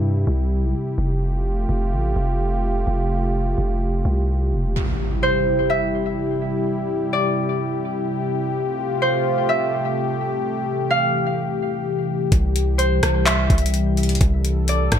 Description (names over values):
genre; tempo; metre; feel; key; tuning
hip hop, atmospheric cloud-rap; 127 BPM; 4/4; half-time; C major; A4 = 440 Hz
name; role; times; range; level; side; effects
dark analog pad; sustained chords; 0.0-15.0 s; C3 to A4; -23 LUFS; left 1 dB; chorus, sidechain pumping, low-pass filter
long sustained 808-style bass; bass; 0.0-4.8, 12.3-15.0 s; E1 to G2; -20 LUFS; equal; none
impact; sound effects; 4.8-6.7 s; none; -27 LUFS; equal; none
concert harp; melody; 5.2-15.0 s; C5 to F5; -22 LUFS; right 1 dB; ping-pong delay
smooth R&B drum kit; drums; 12.3-15.0 s; handclaps, hi-hat, kick drum, rim click; -20 LUFS; equal; gated reverb
room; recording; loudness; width
light reverb; bright 1980s-style digital production; -19 LUFS; side -9 dB against mid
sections
0.0-4.8 A section; 4.8-15.0 B section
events
filter sweep on analog synth pad 0.0-4.8; impact 4.8-6.7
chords
0.0 C; 1.0 Fadd9; 4.8 C; 8.5 Fadd9; 12.3 C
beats
0.04 0.51 | 0.98 1.45 1.93 2.40 | 2.87 3.34 3.82 4.29 | 4.76 5.23 5.71 6.18 | 6.65 7.12 7.59 8.07 | 8.54 9.01 9.48 9.96 | 10.43 10.90 11.38 11.85 | 12.32 12.79 13.27 13.74 | 14.21 14.68